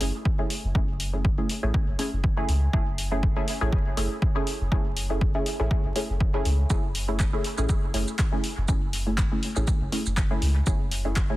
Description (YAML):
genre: dub techno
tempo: 121 BPM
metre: 4/4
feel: swing 55% on 16ths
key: F# minor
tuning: A4 = 440 Hz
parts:
  - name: filtered dub chord stab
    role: stabs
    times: 0.0-11.4 s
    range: A3 to G#4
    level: -30 LUFS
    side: equal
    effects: chorus, phaser, sidechain pumping, dub echo
  - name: soft dub sub bass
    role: bass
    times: 0.0-11.2 s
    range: F#1 to C#2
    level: -27 LUFS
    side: equal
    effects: sidechain pumping
  - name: punchy analog drum machine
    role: drums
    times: 0.0-11.3 s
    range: handclaps, hi-hat, shaker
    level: -33 LUFS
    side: left 1 dB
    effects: overdrive, dub echo
  - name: electronic kick drum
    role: drums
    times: 0.3-11.3 s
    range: none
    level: -25 LUFS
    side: equal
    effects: overdrive
room: light reverb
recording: dense, heavily limited modern master, vinyl crackle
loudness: -23 LUFS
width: side -17 dB against mid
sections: 0.0-11.4 A section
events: none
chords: 0.0 F#m7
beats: 0.25 | 0.75 1.25 1.74 2.24 | 2.73 3.23 3.73 4.22 | 4.72 5.21 5.71 6.21 | 6.70 7.20 7.69 8.19 | 8.68 9.18 9.68 10.17 | 10.67 11.16